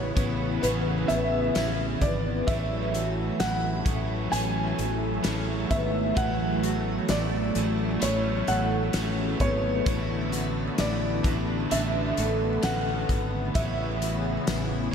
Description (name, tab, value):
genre	dream pop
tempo	65 BPM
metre	4/4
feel	straight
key	unclear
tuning	A4 = 440 Hz
part	felt-muted upright piano	melody	0.0-14.9 s	B4 to G#5	-31 LUFS	right 1 dB	ping-pong delay, slapback echo
part	overdriven electric guitar	accompaniment	0.0-14.9 s	A3 to C#5	-35 LUFS	right 2 dB	tremolo, wide subtle chorus
part	lush unison pad	sustained chords	0.0-14.9 s	C#3 to B3	-30 LUFS	right 1 dB	chorus, phaser
part	picked twelve-string acoustic guitar	arpeggios	0.0-14.9 s	A3 to F#4	-34 LUFS	left 2 dB	lush chorus, ping-pong delay, slapback echo
part	fretless electric bass	bass	0.0-14.9 s	G#1 to A1	-30 LUFS	equal	lush chorus
part	loose indie drum kit	drums	0.2-14.7 s	hi-hat, kick drum, snare drum, tambourine	-30 LUFS	left 1 dB	none
room	moderate lush hall reverb, RT60 2.6 s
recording	big arena sound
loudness	-24 LUFS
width	side -7 dB against mid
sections	0.0-14.9 A section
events	none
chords	0.0 F#m11; 9.9 Bm7/A; 13.6 F#m11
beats	0.63 1.55 | 2.48 3.40 4.32 5.25 | 6.17 7.09 8.02 8.94 | 9.86 10.79 11.71 12.63 | 13.55 14.48